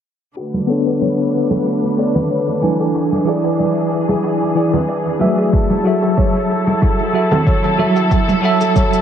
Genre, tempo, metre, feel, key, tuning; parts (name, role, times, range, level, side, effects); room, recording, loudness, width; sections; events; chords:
sunset chillout; 93 BPM; 4/4; swing 53% on 16ths; A4 = 439 Hz
rich studio string section; sustained chords; 0.4-9.0 s; D3 to B4; -21 LUFS; equal
kalimba; arpeggios; 0.4-8.9 s; E4 to D5; -22 LUFS; left 2 dB; low-pass filter, tape echo
shaker; drums; 0.4-9.0 s; -41 LUFS; equal; overdrive, low-pass filter on perc, low-pass filter on room, tape echo
congas; percussion; 0.5-8.9 s; -22 LUFS; right 2 dB; tape echo
bell-like tine electric piano; accompaniment; 0.7-9.0 s; E3 to G#5; -17 LUFS; moving between left 5 dB and right 5 dB; fast stereo tremolo, auto-pan, tape echo
electronic kick drum; drums; 5.5-8.9 s; -16 LUFS; equal
moderate spring reverb, RT60 2.2 s; echo-heavy mix, low-pass filter; -14 LUFS; side -9 dB against mid
0.4-9.0 A section
filter sweep on drum 0.4-9.0; filter sweep on kalimba 0.4-9.0; filter sweep 0.4-9.0
0.4 Bm9; 3.0 E7; 5.5 F#m7